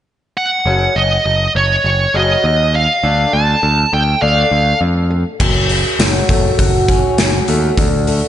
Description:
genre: quiet-loud alternative rock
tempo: 101 BPM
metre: 4/4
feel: straight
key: unclear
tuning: A4 = 441 Hz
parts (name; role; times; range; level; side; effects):
- high-gain lead guitar; melody; 0.4-4.8 s; C#5 to A5; -14 LUFS; right 2 dB; distortion
- fingerpicked swing-style acoustic guitar; arpeggios; 0.7-8.3 s; F#2 to F#4; -19 LUFS; left 2 dB; slapback echo
- growling picked electric bass; bass; 0.7-8.2 s; F#1 to F2; -16 LUFS; equal; overdrive
- big rock drum kit; drums; 5.4-8.2 s; crash cymbal, hi-hat, kick drum, snare drum; -15 LUFS; equal; none
room: wet recital hall reverb, RT60 1.8 s, small room reverb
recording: big arena sound, nothing above 10.4 kHz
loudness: -12 LUFS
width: side -11 dB against mid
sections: 0.7-5.4 A section; 5.4-8.3 B section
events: none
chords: 0.0 N.C.; 0.7 F#5; 3.0 Dm; 5.4 F#m; 7.8 D5

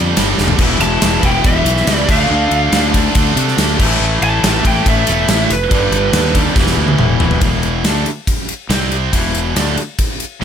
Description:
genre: hard rock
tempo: 141 BPM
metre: 4/4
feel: straight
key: E phrygian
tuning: A4 = 440 Hz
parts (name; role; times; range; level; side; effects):
- overdriven tonewheel organ; sustained chords; 0.0-7.4 s; E3 to F5; -30 LUFS; equal; none
- overdriven semi-hollow guitar; riff; 0.0-10.4 s; E2 to D4; -22 LUFS; left 12 dB; none
- sludgy distorted guitar; riff; 0.0-7.4 s; E2 to D4; -22 LUFS; equal; overdrive
- tight distorted guitar; riff; 0.0-10.4 s; E2 to D4; -20 LUFS; right 13 dB; distortion
- fuzz fingered electric bass; bass; 0.0-10.4 s; E1 to C3; -18 LUFS; equal; overdrive
- gated 80s drum kit; drums; 0.2-10.4 s; crash cymbal, kick drum, ride cymbal, snare drum, splash cymbal, toms; -16 LUFS; equal; none
- lead guitar through a small cranked amp; melody; 0.8-6.3 s; B4 to A5; -18 LUFS; right 1 dB; overdrive, slapback echo
room: little or no reverb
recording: none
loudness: -12 LUFS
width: side -8 dB against mid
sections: 0.0-7.4 A section; 7.4-10.4 B section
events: drum fill 0.4, 6.6-7.4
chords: 0.0 G5; 0.6 E5; 2.1 Dm; 3.8 A5; 5.7 G; 6.6 E5; 8.7 C5; 9.1 E5

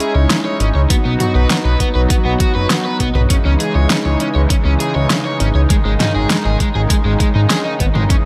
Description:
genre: synthwave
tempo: 100 BPM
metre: 4/4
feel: straight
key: C# minor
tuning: A4 = 440 Hz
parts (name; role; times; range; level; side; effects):
- soft supersaw; sustained chords; 0.0-8.3 s; C#3 to F#4; -22 LUFS; equal; sidechain pumping
- crunchy overdriven guitar; riff; 0.0-8.1 s; G#3 to C#5; -24 LUFS; equal; subtle chorus, tape echo
- pop drum kit; drums; 0.0-8.2 s; hi-hat, snare drum, toms; -21 LUFS; equal; overdrive
- chorused synth bass; bass; 0.2-8.1 s; F#1 to G#2; -17 LUFS; equal; none
- electronic kick drum; drums; 0.9-8.2 s; none; -18 LUFS; equal; overdrive
room: light reverb, digital ambience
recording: none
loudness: -15 LUFS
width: mono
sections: 0.0-8.3 A section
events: none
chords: 0.0 C#madd9; 0.9 B; 3.3 C#madd9; 5.7 G#sus4

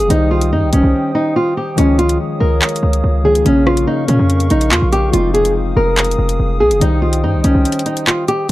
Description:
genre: hip hop, drill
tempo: 143 BPM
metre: 4/4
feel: half-time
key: C phrygian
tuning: A4 = 440 Hz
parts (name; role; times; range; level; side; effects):
- nylon-string guitar; melody; 0.0-8.5 s; Db4 to Bb4; -15 LUFS; equal; low-pass filter, digital delay
- warm concert grand piano; accompaniment; 0.0-8.5 s; Db3 to C5; -21 LUFS; left 3 dB; low-pass filter
- dark analog pad; sustained chords; 0.0-8.5 s; Ab4 to Eb6; -26 LUFS; right 2 dB; chorus
- hard-hitting 808-style bass; bass; 0.0-8.5 s; F1 to Bb2; -15 LUFS; equal; none
- drill drum kit; drums; 0.0-8.5 s; handclaps, hi-hat, rim click; -18 LUFS; equal; overdrive
room: little or no reverb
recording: dark, warm production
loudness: -12 LUFS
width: side -16 dB against mid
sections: 0.0-8.5 A section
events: break 0.9-1.8, 7.7-8.5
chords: 0.1 Cm; 1.8 Dbadd9; 3.5 Bbm; 5.1 Fm7; 6.8 Cm

